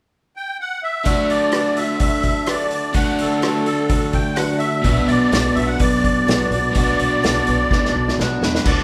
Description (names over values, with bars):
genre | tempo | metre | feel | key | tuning
folk rock and heartland rock | 126 BPM | 4/4 | straight | D major | A4 = 439 Hz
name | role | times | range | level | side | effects
musette accordion | melody | 0.4-8.8 s | A4 to G5 | -24 LUFS | equal | none
picked twelve-string acoustic guitar | accompaniment | 1.0-8.8 s | B2 to F#4 | -25 LUFS | equal | none
crunchy overdriven guitar | riff | 1.0-8.8 s | B2 to F#4 | -25 LUFS | equal | none
vintage drum kit | drums | 1.1-8.8 s | crash cymbal, hi-hat, kick drum, rim click, snare drum | -24 LUFS | equal | none
upright bass | bass | 4.8-8.8 s | B1 to E2 | -27 LUFS | equal | none
room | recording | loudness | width
wet recital hall reverb, RT60 1.5 s | recorded in a church or concert hall | -18 LUFS | mono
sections
0.0-1.1 A section; 1.1-8.7 B section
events
drum fill 7.7-8.7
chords
0.0 N.C.; 1.1 D; 4.9 Bm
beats
0.11 0.58 | 1.06 1.53 2.01 2.48 | 2.96 3.43 3.91 4.38 | 4.86 5.33 5.81 6.28 | 6.76 7.23 7.71 8.18 | 8.66